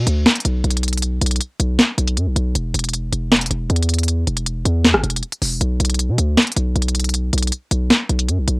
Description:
hip hop, trap; 157 BPM; 4/4; half-time; B minor; A4 = 442 Hz
distorted 808-style bass; bass; 0.0-8.6 s; E1 to B2; -18 LUFS; equal; distortion
trap drum kit; drums; 0.1-8.6 s; finger snaps, hi-hat, rim click, snare drum; -17 LUFS; equal; cassette tape
light reverb; home recording on cassette; -16 LUFS; side -29 dB against mid
0.0-8.6 A section

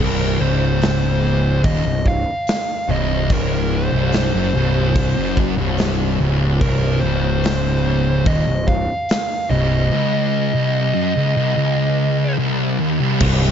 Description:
stoner and doom metal; 72 BPM; 4/4; straight; A4 = 438 Hz
fuzz lead guitar; melody; 0.0-12.3 s; Bb4 to F5; -24 LUFS; right 1 dB; distortion, slapback echo
thick fuzz guitar; riff; 0.0-13.5 s; C2 to F#2; -20 LUFS; left 8 dB; distortion
thick fuzz guitar; riff; 0.0-13.5 s; C2 to F#2; -22 LUFS; right 11 dB; distortion
fuzz picked electric bass; bass; 0.0-13.5 s; C1 to F#1; -21 LUFS; equal; overdrive
big rock drum kit; drums; 0.8-13.5 s; crash cymbal, hi-hat, kick drum, snare drum; -23 LUFS; equal
distorted electric guitar; riff; 13.2-13.5 s; C2; -18 LUFS; equal; distortion
studio ambience; dark, warm production, nothing above 7.7 kHz; -16 LUFS; side -8 dB against mid
0.0-13.2 A section
0.0 Cm

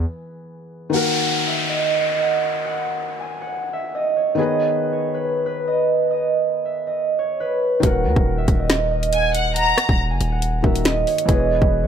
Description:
hip hop, drill; 139 BPM; 4/4; half-time; Eb phrygian; A4 = 440 Hz
felt-muted upright piano; accompaniment; 0.0-11.9 s; Eb3 to B4; -26 LUFS; left 3 dB; low-pass filter
hard-hitting 808-style bass; bass; 0.0-0.1, 7.8-11.9 s; Eb1 to E2; -22 LUFS; equal
concert harp; melody; 0.9-11.9 s; Cb5 to Ab5; -21 LUFS; right 3 dB; low-pass filter
downlifter; sound effects; 0.9-4.4 s; -25 LUFS; left 2 dB
drill drum kit; drums; 7.8-11.7 s; hi-hat, kick drum, rim click, snare drum; -19 LUFS; equal
rich studio violin section; second line; 9.1-10.0 s; Gb5 to Bb5; -21 LUFS; left 2 dB; tape echo
small room ambience; -18 LUFS; side -8 dB against mid
0.9-11.9 A section
break 0.1-0.9
0.0 E; 0.9 Ebm; 4.4 Abm; 7.8 Ebm; 11.3 E

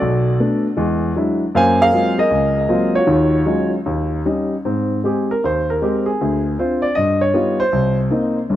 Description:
solo jazz; 156 BPM; 4/4; swing 65% on 8ths, rubato; Ab major from 4.7 s; A4 = 440 Hz
warm grand piano; solo; 0.0-8.6 s; G1 to Ab5; -15 LUFS; equal; tape echo
light reverb; dry, close 1970s-style studio recording; -15 LUFS; side -12 dB against mid
0.0-4.7 A section; 4.7-8.6 B section
grand piano solo 4.7-8.6
0.0 Cbm7; 0.8 E9; 1.6 Gbmaj9#11; 3.1 Ebm11; 3.9 Eb7; 4.7 Abmaj7; 6.2 Dm7b5; 7.0 Gaug7; 7.7 Cm7

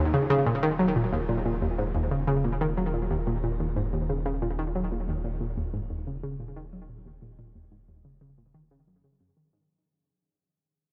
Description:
ambient, sequencer-driven space music; 91 BPM; 4/4; straight; Eb minor; A4 = 440 Hz
analog pluck; riff; 0.0-9.6 s; Eb2 to Gb3; -29 LUFS; equal; chorus, tape echo
round analog bass; bass; 0.0-9.7 s; Eb1; -37 LUFS; equal
moderate huge ambient reverb, RT60 7.9 s; -28 LUFS; mono
0.0-9.7 A section
fade-out 0.0-9.7; filter sweep on synth arpeggio sound 0.0-9.7
0.0 Ebm

